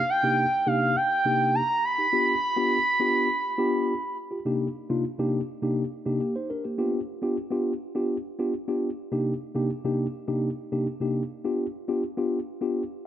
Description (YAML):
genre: funk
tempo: 103 BPM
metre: 4/4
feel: straight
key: C minor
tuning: A4 = 440 Hz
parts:
  - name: expressive portamento lead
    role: melody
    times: 0.0-4.2 s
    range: F5 to B5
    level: -23 LUFS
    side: right 1 dB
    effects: chorus, slapback echo
  - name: mellow tine electric piano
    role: accompaniment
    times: 0.2-12.8 s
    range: C3 to C5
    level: -26 LUFS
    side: left 1 dB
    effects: slow stereo tremolo
room: light reverb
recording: none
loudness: -24 LUFS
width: side -11 dB against mid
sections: 0.0-4.5 A section; 4.5-13.1 B section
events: none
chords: 0.0 Cm9; 2.1 G7; 4.5 Cm9; 6.8 G7; 9.1 Cm9; 11.4 G7